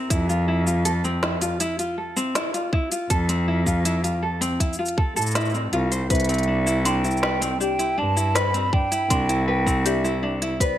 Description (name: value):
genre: folktronica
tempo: 80 BPM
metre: 4/4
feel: straight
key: unclear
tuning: A4 = 437 Hz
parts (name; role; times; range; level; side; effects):
- tenor ukulele; arpeggios; 0.0-10.8 s; C4 to C5; -26 LUFS; left 1 dB; vintage 12-bit sampler grit, low-pass filter, ping-pong delay
- rich cello; bass; 0.1-10.5 s; C2 to A2; -24 LUFS; equal; none
- electronic kick drum; drums; 0.1-10.8 s; none; -23 LUFS; equal; none
- organic electronic drum kit; drums; 0.1-10.8 s; cabasa, hi-hat, snare drum; -27 LUFS; equal; overdrive
- mellow hollow silver concert flute; melody; 6.1-10.8 s; D5 to B5; -26 LUFS; right 2 dB; vintage 12-bit sampler grit, ping-pong delay
- buzzing marimba with medium mallets; second line; 6.1-10.8 s; G4 to C6; -30 LUFS; left 5 dB; ping-pong delay
room: light reverb, studio ambience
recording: none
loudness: -20 LUFS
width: side -12 dB against mid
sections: 0.0-10.8 A section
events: none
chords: 0.1 Fmaj7; 6.1 Cmaj9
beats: | 0.10 0.85 1.60 2.35 | 3.10 3.85 4.60 5.35 | 6.10 6.85 7.60 8.35 | 9.10 9.85 10.60